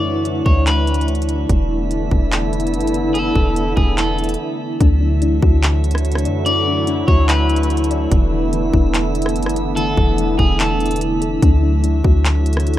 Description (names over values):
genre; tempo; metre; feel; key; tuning
hip hop, atmospheric cloud-rap; 145 BPM; 4/4; half-time; D major; A4 = 435 Hz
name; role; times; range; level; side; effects
electric guitar at the edge of break-up; melody; 0.0-11.0 s; G#4 to D5; -23 LUFS; left 1 dB; spring reverb, tape echo
sweeping resonant pad; sustained chords; 0.0-12.8 s; D3 to E4; -21 LUFS; equal; lush chorus, sidechain pumping
clean 808-style bass; bass; 0.0-12.8 s; E1 to F#2; -18 LUFS; equal; none
drifting glass-harmonics texture; texture; 0.0-12.8 s; D4 to E5; -26 LUFS; equal; chorus, built-in reverb
trap drum kit; drums; 0.3-12.8 s; handclaps, hi-hat, kick drum, rim click; -18 LUFS; equal; none
soft round pluck; arpeggios; 4.8-12.8 s; E3 to D5; -26 LUFS; left 10 dB; chorus, tape echo
room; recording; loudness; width
light reverb; rough home demo mix; -14 LUFS; side -13 dB against mid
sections
0.0-4.8 A section; 4.8-12.8 B section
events
break 4.4-4.8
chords
0.0 Dadd9; 1.5 E7sus4; 4.8 Dadd9; 8.1 E7sus4; 11.4 Dadd9